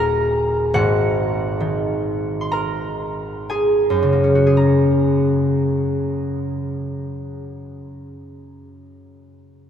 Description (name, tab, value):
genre	classical, solo harp piece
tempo	54-76 BPM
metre	4/4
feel	rubato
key	F# major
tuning	A4 = 440 Hz
part	concert harp	solo	0.0-7.9 s	D#1 to B#5	-18 LUFS	equal	none
room	wet cathedral reverb, RT60 7.5 s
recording	in a vast, echoing space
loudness	-17 LUFS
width	side -8 dB against mid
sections	0.0-4.6 A section; 4.6-8.6 B section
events	slowing down 0.0-4.6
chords	0.0 D#m; 0.7 G#sus2; 4.6 F#add9